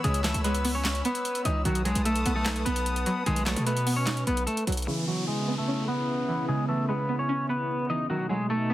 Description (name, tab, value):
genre	hip hop, trap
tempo	149 BPM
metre	4/4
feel	half-time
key	C# minor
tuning	A4 = 441 Hz
part	electric guitar at the edge of break-up	melody	0.0-8.7 s	E3 to D#5	-29 LUFS	left 1 dB	low-pass filter
part	string-like resonator pluck	accompaniment	0.0-8.7 s	C#3 to D#4	-32 LUFS	right 1 dB	chorus, phaser, low-pass filter
part	warm analog pad	sustained chords	0.0-8.7 s	B2 to E6	-33 LUFS	right 1 dB	chorus, low-pass filter
part	distorted 808-style bass	bass	0.0-4.9 s	B1 to B2	-29 LUFS	equal	distortion
part	booming analog drum machine	drums	0.0-4.9 s	handclaps, hi-hat, snare drum	-32 LUFS	equal	none
part	downlifter	sound effects	4.9-8.1 s	none	-38 LUFS	equal	none
room	light reverb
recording	dense, heavily limited modern master, vinyl crackle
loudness	-25 LUFS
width	side -14 dB against mid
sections	0.0-4.9 A section; 4.9-8.7 B section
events	filter sweep 4.9-8.7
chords	0.0 C#m7; 1.7 B7; 4.9 C#m7; 8.1 B7